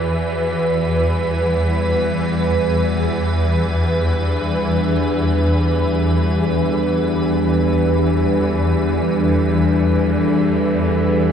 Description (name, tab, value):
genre	dark ambient drone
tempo	free time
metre	none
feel	none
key	unclear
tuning	A4 = 442 Hz
part	deep dark ambient pad	sustained chords	0.0-11.3 s	E2 to B4	-19 LUFS	equal	chorus, built-in reverb
part	swarming drone	drone	0.0-11.3 s	E2 to E3	-18 LUFS	left 1 dB	built-in reverb
part	icy glass pad	texture	0.0-11.3 s	B4	-27 LUFS	right 4 dB	chorus, built-in reverb
room	wet huge ambient reverb, RT60 7.2 s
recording	dark, warm production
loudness	-15 LUFS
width	side -8 dB against mid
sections	0.0-11.3 A section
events	none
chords	0.1 Gadd9/E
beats	free time